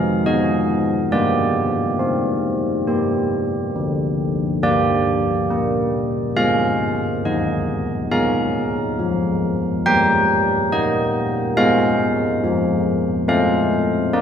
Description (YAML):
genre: classical, tune for church bells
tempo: 69 BPM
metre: 4/4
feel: straight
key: unclear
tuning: A4 = 440 Hz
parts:
  - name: carillon bells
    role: solo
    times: 0.0-14.2 s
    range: D3 to G5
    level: -17 LUFS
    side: equal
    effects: none
room: wet church reverb, RT60 2.7 s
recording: heard from further back in the room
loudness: -17 LUFS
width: side -8 dB against mid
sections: 0.0-14.2 A section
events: none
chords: 0.0 Fm; 1.1 Gsus4; 2.9 G5; 4.6 Gm; 6.4 Ab; 8.1 Bb5/Ab; 9.8 Eb/G; 11.6 Fm/Ab; 13.3 F/A